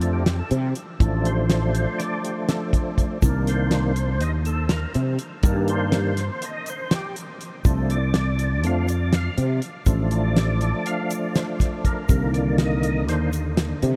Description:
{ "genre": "progressive instrumental, band music in an uneven meter", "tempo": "243 BPM (eighths)", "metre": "9/8", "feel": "straight", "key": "unclear", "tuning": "A4 = 441 Hz", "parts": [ { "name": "percussive tonewheel organ", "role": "accompaniment", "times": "0.0-14.0 s", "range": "D3 to F5", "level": "-29 LUFS", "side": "equal", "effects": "overdrive, chorus vibrato, slow rotary speaker" }, { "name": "sustaining fretless electric bass", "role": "bass", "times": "0.0-14.0 s", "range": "A1 to C3", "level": "-24 LUFS", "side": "equal", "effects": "ensemble chorus" }, { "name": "damped 70s drum kit", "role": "drums", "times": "0.0-13.9 s", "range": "hi-hat, kick drum, snare drum", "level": "-26 LUFS", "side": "equal", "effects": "none" }, { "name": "egg shaker", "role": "percussion", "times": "3.2-13.6 s", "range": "none", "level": "-43 LUFS", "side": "equal", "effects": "none" } ], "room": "light reverb, small room ambience", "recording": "none", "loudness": "-23 LUFS", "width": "mono", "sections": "0.0-14.0 A section", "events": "tonewheel organ solo 0.0-14.0", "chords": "0.0 Dm; 3.2 Cm7; 7.7 Dm/C; 12.1 Cm7" }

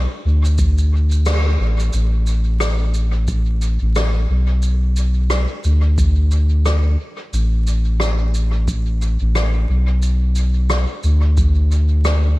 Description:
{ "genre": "ambient dub", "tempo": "89 BPM", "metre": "4/4", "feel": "swing 58% on 16ths", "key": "unclear", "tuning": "A4 = 445 Hz", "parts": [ { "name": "soft dub sub bass", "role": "bass", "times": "0.0-12.4 s", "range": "A1 to D2", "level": "-15 LUFS", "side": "equal", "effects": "tube saturation" }, { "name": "shaker and rim click", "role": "drums", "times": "0.5-12.2 s", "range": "none", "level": "-26 LUFS", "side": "equal", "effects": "dub echo" }, { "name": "electronic kick drum", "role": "drums", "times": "0.6-11.5 s", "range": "none", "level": "-21 LUFS", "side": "equal", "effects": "none" } ], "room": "little or no reverb", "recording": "vinyl crackle", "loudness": "-15 LUFS", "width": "side -20 dB against mid", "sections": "0.0-1.9 A section; 1.9-12.4 B section", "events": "band accent 1.3-1.6", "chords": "none" }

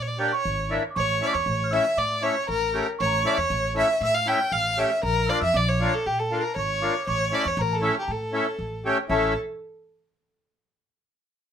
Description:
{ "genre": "klezmer", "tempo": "118 BPM", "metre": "4/4", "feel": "straight", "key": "A phrygian dominant", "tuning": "A4 = 439 Hz", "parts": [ { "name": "rich violin", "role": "melody", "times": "0.0-9.3 s", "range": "G4 to G5", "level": "-25 LUFS", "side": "equal", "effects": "none" }, { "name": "upright bass", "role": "bass", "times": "0.0-9.3 s", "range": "G#1 to Bb2", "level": "-30 LUFS", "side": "equal", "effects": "none" }, { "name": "accordion", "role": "accompaniment", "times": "0.2-9.3 s", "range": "A3 to G4", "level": "-25 LUFS", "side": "left 2 dB", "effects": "none" }, { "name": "celesta", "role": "second line", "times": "0.3-9.3 s", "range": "G5 to F6", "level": "-30 LUFS", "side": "right 4 dB", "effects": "none" } ], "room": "moderate studio reverb, RT60 0.5 s", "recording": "none", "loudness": "-22 LUFS", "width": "side -8 dB against mid", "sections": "0.0-9.1 A section; 9.1-11.1 B section", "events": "none", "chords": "0.0 Bb; 1.0 A; 5.0 Bb; 7.1 A" }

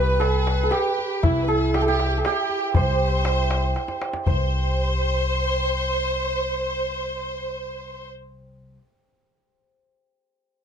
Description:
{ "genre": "Persian modal ensemble", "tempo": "118 BPM", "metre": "3/4", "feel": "straight", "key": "C dastgah chahargah", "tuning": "A4 = 441 Hz", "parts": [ { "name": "santur", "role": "melody", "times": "0.0-8.8 s", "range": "E4 to C5", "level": "-25 LUFS", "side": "right 3 dB", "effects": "none" }, { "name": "rich studio violin section", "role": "second line", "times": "0.0-8.1 s", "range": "E4 to C5", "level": "-26 LUFS", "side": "equal", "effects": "none" }, { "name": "upright bass", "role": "bass", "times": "0.0-8.8 s", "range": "C2", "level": "-25 LUFS", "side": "equal", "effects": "none" }, { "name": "tombak", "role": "percussion", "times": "0.2-4.5 s", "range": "none", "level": "-25 LUFS", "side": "left 2 dB", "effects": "none" } ], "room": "light reverb", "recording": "dark, warm production", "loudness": "-20 LUFS", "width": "side -8 dB against mid", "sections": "0.0-4.3 A section; 4.3-7.3 B section", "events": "drum fill 3.8-4.3", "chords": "none" }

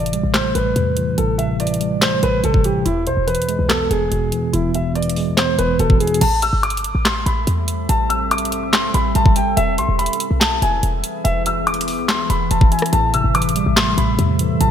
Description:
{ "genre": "hip hop, trap", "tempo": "143 BPM", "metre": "4/4", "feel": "half-time", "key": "A minor", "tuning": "A4 = 445 Hz", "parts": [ { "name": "dark baby grand piano", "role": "melody", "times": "0.0-14.7 s", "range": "E4 to E6", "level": "-20 LUFS", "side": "left 1 dB", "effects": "low-pass filter" }, { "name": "mellow tine electric piano", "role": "accompaniment", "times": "0.0-6.2, 12.9-14.7 s", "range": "E2 to B3", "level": "-20 LUFS", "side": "equal", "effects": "medium stereo tremolo, low-pass filter" }, { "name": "short 808-style bass", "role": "bass", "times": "0.0-14.7 s", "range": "E1 to E2", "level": "-21 LUFS", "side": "equal", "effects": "none" }, { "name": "trap drum kit", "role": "drums", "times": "0.1-14.7 s", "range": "crash cymbal, handclaps, hi-hat, kick drum, rim click, snare drum", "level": "-19 LUFS", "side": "equal", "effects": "none" }, { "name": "deep dark ambient pad", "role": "sustained chords", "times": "7.1-14.7 s", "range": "E3 to E5", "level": "-25 LUFS", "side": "equal", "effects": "chorus, built-in reverb" } ], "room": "moderate lush hall reverb, RT60 1.9 s, digital ambience", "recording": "bright 1980s-style digital production", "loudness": "-15 LUFS", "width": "side -9 dB against mid", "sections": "0.0-6.2 A section; 6.2-14.7 B section", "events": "none", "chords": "0.0 Am7; 2.9 E; 6.2 Am7; 9.6 E; 12.9 Am7" }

